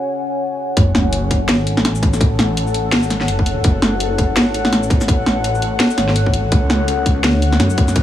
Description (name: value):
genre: half-time drum and bass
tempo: 167 BPM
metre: 4/4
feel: swing 58% on 16ths, half-time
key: F# minor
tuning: A4 = 440 Hz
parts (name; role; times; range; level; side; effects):
- deep dark ambient pad; sustained chords; 0.0-8.0 s; C#4 to G#5; -21 LUFS; left 2 dB; chorus, built-in reverb, sidechain pumping
- phased detuned saw bass; bass; 0.8-8.0 s; F#1 to F#2; -19 LUFS; equal; phaser
- drum and bass drum kit; drums; 0.8-8.0 s; hi-hat, shaker, snare drum; -18 LUFS; equal; overdrive
- electronic kick drum; drums; 0.8-8.0 s; none; -15 LUFS; equal; overdrive
- sub drop; sound effects; 0.8-2.2 s; none; -23 LUFS; equal; none
room: light reverb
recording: small room ambience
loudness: -14 LUFS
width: side -12 dB against mid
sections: 0.8-8.0 A section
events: break 0.1-0.8; drop 0.8-8.0; impact 0.8-2.2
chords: 0.0 C#sus4; 0.8 F#m; 6.5 C#sus4